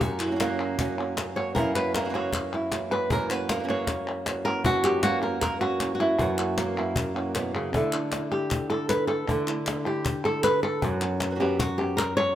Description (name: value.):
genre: flamenco.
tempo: 155 BPM.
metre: 4/4.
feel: straight.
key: F# phrygian dominant.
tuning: A4 = 441 Hz.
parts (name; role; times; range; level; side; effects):
flamenco guitar; melody; 0.0-12.3 s; F#2 to C#5; -25 LUFS; equal; none.
flamenco guitar; stabs; 0.0-12.3 s; F#2 to F#4; -33 LUFS; right 5 dB; none.
cajon; percussion; 0.0-12.2 s; none; -32 LUFS; left 2 dB; none.
palmas hand claps; percussion; 0.0-12.3 s; none; -34 LUFS; left 3 dB; none.
room: moderate plate reverb, RT60 3.0 s.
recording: rough home demo mix.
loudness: -24 LUFS.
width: side -12 dB against mid.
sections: 0.0-7.7 A section; 7.7-12.3 B section.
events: nylon-string guitar solo 7.7-12.3.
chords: 0.0 F#; 1.6 F#7; 7.7 Dsus2; 10.8 F#sus4.